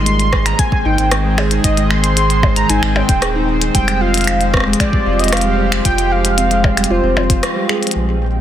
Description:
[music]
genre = IDM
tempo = 114 BPM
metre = 4/4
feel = straight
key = unclear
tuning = A4 = 440 Hz
[part]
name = warm velvety synth lead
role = melody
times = 0.0-7.7 s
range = C5 to C6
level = -19 LUFS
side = right 2 dB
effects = chorus, digital delay
[part]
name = warbly tape-like pad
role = sustained chords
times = 0.0-8.4 s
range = D3 to C5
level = -20 LUFS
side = equal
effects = chorus, built-in reverb
[part]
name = warm sub bass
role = bass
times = 0.0-8.4 s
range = Eb1 to Bb1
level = -18 LUFS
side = equal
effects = none
[part]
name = harp-like synth pluck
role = arpeggios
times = 0.1-7.8 s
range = G3 to Ab4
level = -21 LUFS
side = equal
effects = chorus, tape echo
[part]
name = glitchy drum kit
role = drums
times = 0.1-8.0 s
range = finger snaps, hi-hat, percussion blips, rim click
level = -19 LUFS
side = left 1 dB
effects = soft clipping on snare, low-pass filter on snare, small room ambience, low-pass filter on hats, low-pass filter on perc
[part]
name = electronic kick drum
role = drums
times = 0.3-7.4 s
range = none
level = -16 LUFS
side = equal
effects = small room ambience
[part]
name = flickering grainy texture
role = texture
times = 8.2-8.4 s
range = G5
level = -33 LUFS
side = right 7 dB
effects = built-in reverb
[sound]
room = light reverb, digital ambience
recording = dense, heavily limited modern master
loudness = -12 LUFS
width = side -11 dB against mid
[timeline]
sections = 0.0-8.0 A section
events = break 7.4-8.0; band accent 7.4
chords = 0.0 Ab; 3.7 Fmadd9

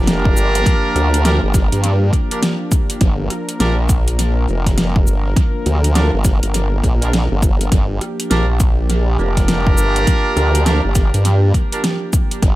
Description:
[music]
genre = glitch hop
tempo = 102 BPM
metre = 4/4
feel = swing 62% on 16ths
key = G minor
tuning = A4 = 441 Hz
[part]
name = warm analog pad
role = sustained chords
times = 0.0-12.6 s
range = F3 to Bb4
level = -25 LUFS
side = right 1 dB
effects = chorus, vintage 12-bit sampler grit, sidechain pumping
[part]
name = clear horn section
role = stabs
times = 0.0-11.8 s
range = D4 to Bb4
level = -22 LUFS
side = right 1 dB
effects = vintage 12-bit sampler grit, sidechain pumping, tape echo
[part]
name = formant-sweep wobble bass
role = bass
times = 0.0-12.6 s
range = F1 to G2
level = -16 LUFS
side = equal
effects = chorus, tube saturation
[part]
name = pop drum kit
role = drums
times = 0.0-12.6 s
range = hi-hat, rim click, shaker, snare drum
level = -22 LUFS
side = equal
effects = overdrive, tape echo
[part]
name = electronic kick drum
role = drums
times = 0.3-12.6 s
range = none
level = -16 LUFS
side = equal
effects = overdrive
[sound]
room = little or no reverb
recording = echo-heavy mix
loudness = -13 LUFS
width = side -17 dB against mid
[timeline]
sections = 0.0-12.6 A section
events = none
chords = 0.0 Gm7

